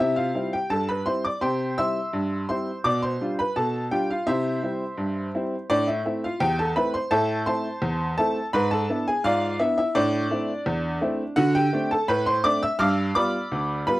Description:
ragtime piano; 84 BPM; 2/4; straight; C major; A4 = 435 Hz
clear upright piano; solo; 0.0-14.0 s; D2 to F6; -22 LUFS; equal
little or no reverb; dry, close 1970s-style studio recording; -22 LUFS; side -17 dB against mid
0.0-14.0 A section
0.0 C; 2.8 G7/B; 4.3 C; 5.7 Am; 8.5 E7/G#; 10.0 Am; 11.4 D7; 12.8 G7

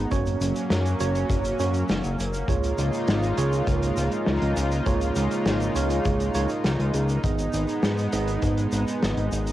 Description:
synthwave; 101 BPM; 4/4; straight; A4 = 439 Hz
chorused pulse-width pad; sustained chords; 0.0-9.5 s; C#3 to E#4; -28 LUFS; left 1 dB; sidechain pumping, cassette tape
tine electric piano; stabs; 0.0-9.5 s; A#3 to D#5; -29 LUFS; right 6 dB; overdrive, fast stereo tremolo, cassette tape, tape echo
fat analog bass; bass; 0.0-9.5 s; F#1 to G#2; -25 LUFS; left 1 dB
kick drum; drums; 0.1-8.5 s; -29 LUFS; left 1 dB; cassette tape
vintage drum kit; drums; 0.1-9.5 s; hi-hat, shaker, snare drum; -30 LUFS; equal; cassette tape
light reverb, small room ambience; home recording on cassette; -22 LUFS; side -14 dB against mid
0.0-9.5 A section
0.1 F#; 2.5 C#6; 7.2 G#m

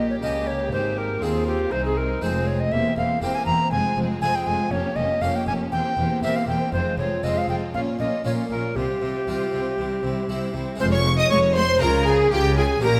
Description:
classical, baroque-style concerto movement with solo episodes; 119 BPM; 4/4; straight; F minor; A4 = 440 Hz
bright tenor recorder; melody; 0.0-13.0 s; G4 to Bb5; -27 LUFS; equal
clear chamber violin section; melody; 0.0-13.0 s; E4 to Eb6; -34 LUFS; equal
rich chamber violin section; second line; 0.0-13.0 s; C4 to Eb5; -31 LUFS; equal
dark symphonic viola section; accompaniment; 0.0-12.9 s; G3 to G4; -32 LUFS; equal
harpsichord; accompaniment; 0.0-13.0 s; C2 to Ab4; -34 LUFS; equal
rich studio cello section; bass; 0.0-13.0 s; C2 to Db3; -32 LUFS; equal
rich studio double bass section; bass; 0.0-13.0 s; E1 to Eb2; -31 LUFS; equal
wet recital hall reverb, RT60 1.6 s; -23 LUFS; mono
0.0-10.8 A section; 10.8-13.0 B section
0.0 Gdim/Bb; 0.7 Ab; 2.7 C7/E; 3.7 Fm; 4.7 Gm7b5/F; 5.7 C7/E; 6.7 Fm; 7.7 Bbm; 8.8 Csus4; 9.8 C; 10.8 Fm; 11.8 Db

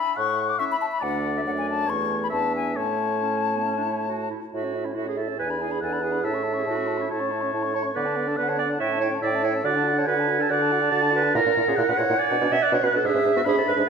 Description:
quick classical-period movement for wind quintet; 141 BPM; 4/4; straight; A major; A4 = 437 Hz
bright silver concert flute; melody; 0.0-13.9 s; C#5 to D6; -29 LUFS; left 8 dB
clear oboe; second line; 0.0-13.8 s; C#5 to B5; -28 LUFS; left 3 dB
mellow bassoon; bass; 0.2-13.8 s; D2 to D3; -28 LUFS; right 2 dB
clear French horn; accompaniment; 0.6-13.8 s; A3 to F#4; -32 LUFS; right 1 dB
warm clarinet; accompaniment; 0.6-13.9 s; B3 to E5; -26 LUFS; right 7 dB
wet recital hall reverb, RT60 1.7 s; minimal, uncompressed stereo recording; -21 LUFS; side -6 dB against mid
0.0-4.5 A section; 4.5-13.9 B section
0.2 A; 1.0 D; 1.9 A/E; 2.3 E7; 2.8 A; 5.4 E7; 6.2 A; 8.0 D6; 8.8 A7; 9.6 D; 11.3 F#7/A#; 12.2 Bm; 13.0 E7/G#

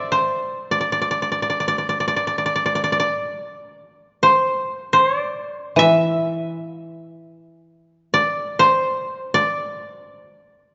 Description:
japanese traditional, Japanese chamber music; free time; D suspended pentatonic; A4 = 440 Hz
koto; melody; 0.0-10.7 s; G4 to E5; -20 LUFS; equal
koto; accompaniment; 0.0-8.5 s; A2 to E3; -22 LUFS; equal
moderate concert hall reverb, RT60 2.1 s; nothing above 7.6 kHz; -20 LUFS; mono
0.0-10.7 A section

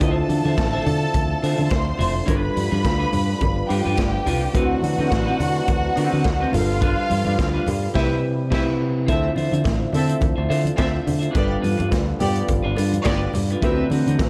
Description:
disco; 106 BPM; 4/4; swing 56% on 16ths; D dorian; A4 = 440 Hz
clear studio string section; second line; 0.0-13.8 s; B3 to C6; -29 LUFS; equal
clean electric guitar; accompaniment; 0.0-14.3 s; C4 to E5; -31 LUFS; equal; spring reverb
tine electric piano; accompaniment; 0.0-14.3 s; C3 to C5; -29 LUFS; equal; overdrive
mellow French horn section; sustained chords; 0.0-14.3 s; C3 to E5; -32 LUFS; equal
fingered electric bass; bass; 0.0-14.3 s; F1 to D3; -26 LUFS; equal
vintage drum kit; drums; 0.0-14.3 s; crash cymbal, hi-hat, kick drum, snare drum; -28 LUFS; equal
congas; percussion; 0.0-14.3 s; -33 LUFS; equal
cowbell; percussion; 0.0-14.3 s; -39 LUFS; equal
light reverb, small room reverb; dark, warm production; -21 LUFS; mono
0.0-9.1 A section; 9.1-14.3 B section
band accent 8.0-9.1
0.0 Dm9; 2.3 G7; 4.5 D13; 6.5 G7; 8.0 Cmaj7; 9.1 Dm9; 11.4 G7; 13.6 D13

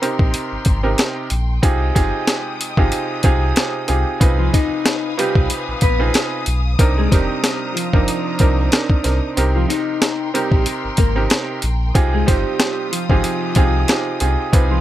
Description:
hip hop, boom-bap hip-hop; 93 BPM; 4/4; swing 55% on 16ths; A4 = 440 Hz
clear upright piano; accompaniment; 0.0-14.8 s; C3 to C5; -21 LUFS; right 3 dB; high-pass filter, low-pass filter
warm studio string section; sustained chords; 0.0-14.8 s; Ab3 to Eb6; -29 LUFS; left 3 dB; high-pass filter, low-pass filter
boom bap sampler-style drum kit; drums; 0.0-14.7 s; hi-hat, kick drum, snare drum; -16 LUFS; equal
sub bass with octave; bass; 0.2-14.8 s; F1 to C2; -19 LUFS; equal
mellow electric guitar; melody; 4.4-14.8 s; F3 to Eb5; -23 LUFS; left 1 dB; high-pass filter, low-pass filter, digital delay
little or no reverb; -15 LUFS; side -13 dB against mid
0.0-14.8 A section
break 0.0-4.2; kick muted 9.4-10.0
0.0 Abmaj9; 1.6 Fm9; 4.2 G7b9b13; 6.8 Cm7; 9.4 Abmaj9; 11.9 Fm9

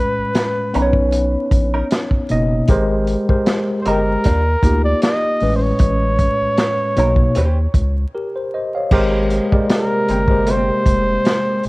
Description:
R&B, neo-soul; 77 BPM; 4/4; swing 53% on 16ths; A4 = 441 Hz
warm flugelhorn; melody; 0.0-11.7 s; Bb4 to Eb5; -20 LUFS; equal
tine electric piano; accompaniment; 0.0-11.7 s; A2 to F5; -19 LUFS; equal; medium stereo tremolo
round analog bass; bass; 0.2-11.7 s; F1 to Eb2; -19 LUFS; equal
crunchy breakbeat drum kit; drums; 0.3-11.7 s; crash cymbal, hi-hat, kick drum, snare drum; -18 LUFS; equal
vintage hollow-body jazz guitar; second line; 0.7-10.7 s; G3 to C5; -25 LUFS; right 2 dB; wah
chorused pulse-width pad; sustained chords; 8.9-11.7 s; C3 to G4; -27 LUFS; equal
studio ambience; worn, warbling old tape, cassette tape, vinyl crackle, warbly pitch drift; -14 LUFS; side -22 dB against mid
0.0-8.9 A section; 8.9-11.7 B section
break 8.1-8.9
0.0 Amaj9; 0.7 Bmaj9; 2.7 Abmaj9; 4.2 Ebmaj9; 5.4 Amaj9; 7.0 Bmaj9; 7.4 Eb6; 8.9 Abmaj9

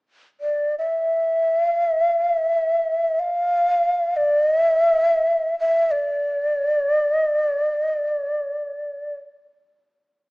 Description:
japanese traditional, Japanese chamber music; free time; D hirajoshi; A4 = 437 Hz
breathy shakuhachi; solo; 0.4-9.2 s; D5 to F5; -18 LUFS; equal
moderate recital hall reverb, RT60 1.5 s; small speaker sound; -18 LUFS; side -29 dB against mid
0.0-10.3 A section

